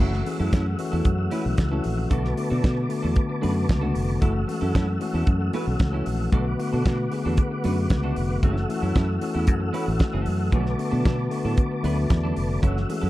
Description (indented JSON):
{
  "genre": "disco",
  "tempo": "114 BPM",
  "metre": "4/4",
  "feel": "straight",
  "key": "F# minor",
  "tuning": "A4 = 439 Hz",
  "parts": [
    { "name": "clean electric guitar", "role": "accompaniment", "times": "0.0-13.1 s", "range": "F#3 to B4", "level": "-33 LUFS", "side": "right 4 dB", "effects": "lush chorus" },
    { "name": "mellow tine electric piano", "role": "accompaniment", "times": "0.0-13.1 s", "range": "D3 to E5", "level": "-28 LUFS", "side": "left 3 dB", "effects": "none" },
    { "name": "mellow tonewheel organ", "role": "sustained chords", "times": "0.0-13.1 s", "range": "A3 to E6", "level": "-33 LUFS", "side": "right 1 dB", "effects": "chorus vibrato, fast rotary speaker" },
    { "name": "fingered electric bass", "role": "bass", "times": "0.0-13.1 s", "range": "E#1 to B2", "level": "-25 LUFS", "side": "equal", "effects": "none" },
    { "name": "damped 70s drum kit", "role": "drums", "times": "0.1-13.0 s", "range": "hi-hat, kick drum, snare drum", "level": "-22 LUFS", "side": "equal", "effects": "none" }
  ],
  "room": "light reverb, studio ambience",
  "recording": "dark, warm production",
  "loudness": "-21 LUFS",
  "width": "side -16 dB against mid",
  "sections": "0.0-13.1 A section",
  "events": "tine electric piano fill 11.6-12.6",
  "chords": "0.0 F#m7; 2.1 Bm7; 4.2 F#m7; 6.3 Bm7; 8.4 F#m7; 10.5 Bm7",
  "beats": "| 0.00 0.52 1.05 1.58 | 2.11 2.64 3.16 3.69 | 4.22 4.74 5.27 5.80 | 6.32 6.85 7.38 7.90 | 8.43 8.95 9.48 10.00 | 10.53 11.05 11.58 12.10 | 12.63"
}